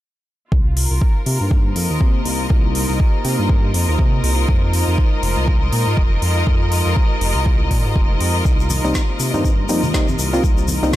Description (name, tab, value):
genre	deep house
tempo	121 BPM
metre	4/4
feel	swing 58% on 16ths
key	C minor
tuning	A4 = 438 Hz
part	warbly tape-like pad	sustained chords	1.0-11.0 s	Ab3 to C5	-28 LUFS	equal	chorus, built-in reverb, sidechain pumping
part	smooth synth bass	bass	0.5-10.9 s	F1 to C3	-20 LUFS	equal	sidechain pumping
part	electronic kick drum	drums	0.5-11.0 s	none	-16 LUFS	equal	none
part	rich studio string section	texture	0.5-11.0 s	F4 to Eb5	-24 LUFS	left 1 dB	sidechain pumping
part	deep house drum kit	drums	0.8-11.0 s	hi-hat, snare drum	-26 LUFS	left 1 dB	none
part	tube shaker	percussion	8.5-11.0 s	none	-30 LUFS	left 7 dB	none
part	congas	percussion	8.7-10.8 s	none	-27 LUFS	right 2 dB	none
part	percussive organ stab	stabs	8.8-10.9 s	G3 to F4	-21 LUFS	equal	chorus, sidechain pumping, digital delay
room	small room ambience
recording	none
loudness	-15 LUFS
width	side -14 dB against mid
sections	0.5-11.0 A section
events	filter sweep on analog synth bass 0.5-11.0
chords	0.5 Cm7; 4.5 Fm7; 8.5 Cm7